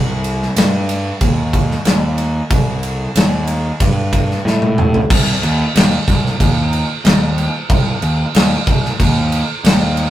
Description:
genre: stoner and doom metal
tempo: 92 BPM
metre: 4/4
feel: straight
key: C dorian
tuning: A4 = 440 Hz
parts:
  - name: fuzz picked electric bass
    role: bass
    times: 0.0-10.1 s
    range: C2 to A2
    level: -17 LUFS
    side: equal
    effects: overdrive, tube saturation
  - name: big rock drum kit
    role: drums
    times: 0.2-10.1 s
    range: crash cymbal, kick drum, ride cymbal, snare drum, toms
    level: -14 LUFS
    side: equal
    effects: none
room: light reverb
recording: rough rehearsal-room recording, tube saturation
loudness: -13 LUFS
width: side -13 dB against mid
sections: 0.0-5.1 A section; 5.1-10.1 B section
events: drum fill 4.5-5.1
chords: none

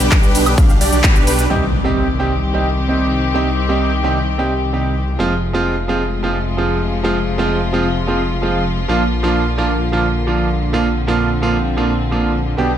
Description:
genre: EDM, festival progressive house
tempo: 130 BPM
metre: 4/4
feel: straight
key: C minor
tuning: A4 = 440 Hz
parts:
  - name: warm studio string section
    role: sustained chords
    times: 0.0-12.8 s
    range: C3 to G4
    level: -21 LUFS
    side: left 2 dB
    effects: sidechain pumping
  - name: supersaw chords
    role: riff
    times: 0.0-1.5 s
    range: D4 to F5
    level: -20 LUFS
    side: right 2 dB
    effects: sidechain pumping, low-pass filter, ping-pong delay
  - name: wide detuned saw bass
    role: bass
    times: 0.0-12.8 s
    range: F1 to C2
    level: -20 LUFS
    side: equal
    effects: chorus, tube saturation, sidechain pumping
  - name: big-room dance drum kit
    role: drums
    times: 0.0-1.6 s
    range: crash cymbal, handclaps, hi-hat, ride cymbal, shaker, woodblock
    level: -19 LUFS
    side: equal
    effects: low-pass filter on hats, low-pass filter on perc, low-pass filter on cymbals, low-pass filter on snare, low-pass filter on room
  - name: electronic kick drum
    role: drums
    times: 0.1-1.1 s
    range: none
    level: -12 LUFS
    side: equal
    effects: none
  - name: bright grand piano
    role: accompaniment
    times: 1.5-12.7 s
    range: Bb2 to G4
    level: -18 LUFS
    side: right 3 dB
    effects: sidechain pumping, ping-pong delay
  - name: impact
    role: sound effects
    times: 1.5-3.3 s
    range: none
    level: -23 LUFS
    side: left 1 dB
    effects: none
room: light reverb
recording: none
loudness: -14 LUFS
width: side -10 dB against mid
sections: 0.0-1.5 A section; 1.5-12.8 B section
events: drop 0.0-1.5; band accent 1.0; impact 1.5-3.3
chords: 0.0 G/B; 1.5 Cm; 5.2 Fm; 8.9 Bb

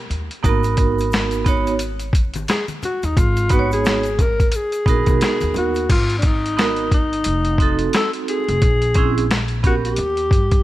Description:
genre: hip hop, jazz-hop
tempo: 88 BPM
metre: 4/4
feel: swing 59% on 16ths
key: G# dorian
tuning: A4 = 440 Hz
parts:
  - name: mellow alto saxophone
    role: melody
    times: 0.0-10.6 s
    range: D4 to A#4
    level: -22 LUFS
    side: left 2 dB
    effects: none
  - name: upright bass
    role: bass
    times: 0.1-10.6 s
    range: F1 to G2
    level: -23 LUFS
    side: equal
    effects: none
  - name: boom bap sampler-style drum kit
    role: drums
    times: 0.1-10.6 s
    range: crash cymbal, hi-hat, kick drum, snare drum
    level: -19 LUFS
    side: equal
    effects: none
  - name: vibraphone with medium hard mallets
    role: accompaniment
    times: 0.4-9.9 s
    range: A#3 to C#5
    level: -22 LUFS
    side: right 6 dB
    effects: none
  - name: egg shaker and congas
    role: percussion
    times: 0.4-5.9 s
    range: none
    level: -34 LUFS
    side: left 5 dB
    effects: none
room: light reverb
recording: vinyl crackle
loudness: -16 LUFS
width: side -15 dB against mid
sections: 0.0-5.9 A section; 5.9-10.6 A section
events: none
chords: 0.4 G#m9; 7.3 F7b9; 8.6 A#m7b5; 10.0 D#

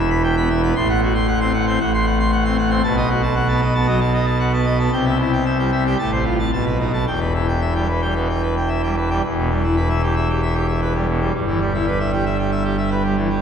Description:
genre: classical, organ toccata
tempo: 115 BPM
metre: 4/4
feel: straight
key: E minor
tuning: A4 = 440 Hz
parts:
  - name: pipe organ, full organ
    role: solo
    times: 0.0-13.4 s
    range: E1 to C6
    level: -16 LUFS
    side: equal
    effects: none
room: wet church reverb, RT60 3.4 s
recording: recorded in a church or concert hall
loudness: -17 LUFS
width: side -7 dB against mid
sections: 0.0-9.2 A section; 9.2-13.4 B section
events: none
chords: 0.0 Em; 0.8 F#dim/A; 2.8 B7; 4.9 C; 6.0 F/A; 6.5 B7; 7.1 Em; 11.3 Em/G

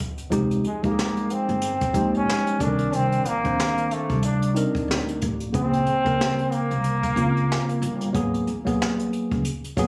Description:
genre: hip hop, jazz-hop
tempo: 92 BPM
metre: 4/4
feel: swing 59% on 16ths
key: F minor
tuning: A4 = 440 Hz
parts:
  - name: jazz brush drum kit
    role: drums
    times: 0.0-9.9 s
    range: hi-hat, kick drum, snare drum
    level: -32 LUFS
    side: equal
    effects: none
  - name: barky tine electric piano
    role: accompaniment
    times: 0.3-9.9 s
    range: Db3 to C5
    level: -27 LUFS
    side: equal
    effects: none
  - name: upright bass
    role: bass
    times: 0.3-9.9 s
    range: F1 to D2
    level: -29 LUFS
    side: equal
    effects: none
  - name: bright trombone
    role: melody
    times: 0.7-8.2 s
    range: Ab3 to D4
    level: -28 LUFS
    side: equal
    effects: analog delay
room: light reverb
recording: recorded on a phone in the room, club reverb, compression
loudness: -24 LUFS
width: mono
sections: 0.3-9.9 A section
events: break 0.0-0.3; trombone solo 0.3-9.9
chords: 0.3 Fm9; 2.6 Cm9; 5.5 Bbm9; 8.1 Abm9

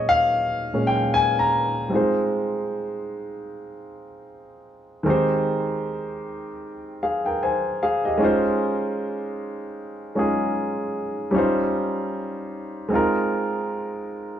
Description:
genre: soul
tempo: 76 BPM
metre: 4/4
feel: swing 58% on 16ths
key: Ab major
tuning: A4 = 440 Hz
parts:
  - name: warm grand piano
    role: solo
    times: 0.0-14.4 s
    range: Bb2 to Bb5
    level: -22 LUFS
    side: equal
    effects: none
room: moderate studio reverb, RT60 0.6 s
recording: band playing live in one room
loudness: -21 LUFS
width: side -10 dB against mid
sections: 0.0-1.9 A section; 1.9-14.4 B section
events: grand piano solo 0.0-1.9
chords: 0.0 Bbm7; 1.9 Fm7; 5.1 Abmaj7/Eb; 8.2 Dbmaj9; 11.4 Eb13; 12.9 Ab69

